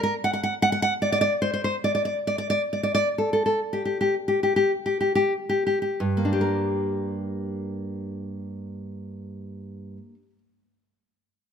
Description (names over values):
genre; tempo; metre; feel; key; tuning
romantic piece for solo classical guitar; 44-76 BPM; 2/4; rubato; G minor; A4 = 439 Hz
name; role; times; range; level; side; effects
nylon-string guitar; solo; 0.0-10.4 s; G2 to F#5; -23 LUFS; equal; none
room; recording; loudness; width
light reverb; close, detailed microphones; -22 LUFS; side -7 dB against mid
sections
0.0-6.0 A section; 6.0-11.3 B section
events
slowing down 0.9-6.0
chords
0.0 N.C.; 6.0 Gm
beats
| 0.13 0.93 | 1.75 2.62 | 3.59 4.71 | 5.99 7.30 | 8.63 9.96